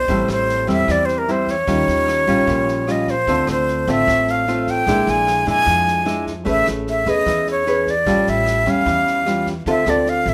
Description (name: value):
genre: bossa nova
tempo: 150 BPM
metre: 4/4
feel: straight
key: unclear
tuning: A4 = 440 Hz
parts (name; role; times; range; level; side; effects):
- breathy concert flute; melody; 0.0-10.3 s; Bb4 to Ab5; -20 LUFS; equal; none
- nylon-string guitar; accompaniment; 0.0-10.3 s; A2 to B4; -23 LUFS; equal; none
- upright bass; bass; 0.0-10.3 s; A1 to F2; -29 LUFS; equal; none
- open jazz drum kit; drums; 0.1-10.3 s; kick drum, rim click, snare drum; -35 LUFS; equal; none
room: light reverb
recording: none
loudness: -18 LUFS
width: mono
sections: 0.0-10.3 A section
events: none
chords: 0.1 Am7; 1.7 Eb9; 3.3 Dm7; 4.9 Bb7#11; 6.5 Amaj9; 8.1 A7b13; 9.7 Dm7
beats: | 0.08 0.48 0.88 1.28 | 1.68 2.08 2.48 2.88 | 3.27 3.67 4.07 4.47 | 4.87 5.27 5.67 6.07 | 6.47 6.87 7.26 7.67 | 8.06 8.46 8.86 9.26 | 9.66 10.06